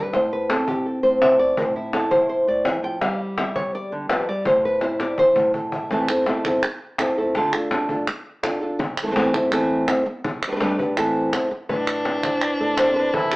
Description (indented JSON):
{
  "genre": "flamenco",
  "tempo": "166 BPM",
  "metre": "4/4",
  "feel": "straight",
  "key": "A minor",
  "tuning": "A4 = 440 Hz",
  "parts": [
    { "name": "flamenco guitar", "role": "melody", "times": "0.0-13.4 s", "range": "A2 to G5", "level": "-20 LUFS", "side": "equal", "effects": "none" },
    { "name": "cajon", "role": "percussion", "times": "0.1-13.4 s", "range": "none", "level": "-27 LUFS", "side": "left 1 dB", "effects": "none" },
    { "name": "palmas hand claps", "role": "percussion", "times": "6.1-13.4 s", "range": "none", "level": "-27 LUFS", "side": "right 2 dB", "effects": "none" },
    { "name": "breathy soprano saxophone", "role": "second line", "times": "11.7-13.4 s", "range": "D4 to E4", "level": "-24 LUFS", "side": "equal", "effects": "none" }
  ],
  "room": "wet studio reverb, RT60 0.8 s",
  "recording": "band playing live in one room, AM radio sound",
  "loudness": "-19 LUFS",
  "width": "side -22 dB against mid",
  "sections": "0.0-5.9 A section; 5.9-11.7 B section; 11.7-13.4 C section",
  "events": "nylon-string guitar solo 0.0-5.9; drum fill 4.8-5.9",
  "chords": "0.1 Am; 3.0 G5; 4.5 A5; 5.9 Am; 7.4 Dm; 8.8 Am; 10.2 Gadd9; 11.0 Am; 11.7 Amadd9",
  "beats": "| 0.13 0.49 0.85 1.21 | 1.57 1.94 2.30 2.66 | 3.02 3.38 3.74 4.10 | 4.46 4.82 5.18 5.54 | 5.91 6.27 6.63 6.99 | 7.35 7.71 8.07 8.44 | 8.80 9.16 9.52 9.88 | 10.24 10.61 10.97 11.33 | 11.69 12.05 12.41 12.78 | 13.14"
}